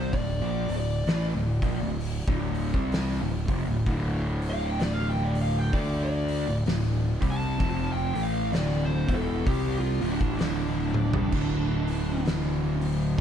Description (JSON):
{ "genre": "stoner and doom metal", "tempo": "64 BPM", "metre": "4/4", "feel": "swing 59% on 8ths", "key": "D minor", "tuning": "A4 = 440 Hz", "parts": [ { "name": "fuzz lead guitar", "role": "melody", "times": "0.0-12.2 s", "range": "D4 to A5", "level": "-33 LUFS", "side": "right 1 dB", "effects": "distortion, analog delay" }, { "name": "fuzz guitar", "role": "riff", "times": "0.0-13.2 s", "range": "D2 to D4", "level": "-28 LUFS", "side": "equal", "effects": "distortion" }, { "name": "fuzz fingered electric bass", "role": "bass", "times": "0.0-13.2 s", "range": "D1 to D2", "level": "-31 LUFS", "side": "equal", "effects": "overdrive" }, { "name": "oversized low-tuned drum kit", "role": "drums", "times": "0.1-13.2 s", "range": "crash cymbal, hi-hat, kick drum, snare drum, toms", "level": "-31 LUFS", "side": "equal", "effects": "none" } ], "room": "light reverb", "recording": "dark, warm production", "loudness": "-24 LUFS", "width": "side -9 dB against mid", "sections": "0.0-13.2 A section", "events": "lead electric guitar solo 0.0-13.2; drum fill 10.9-11.3", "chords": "0.0 Dm" }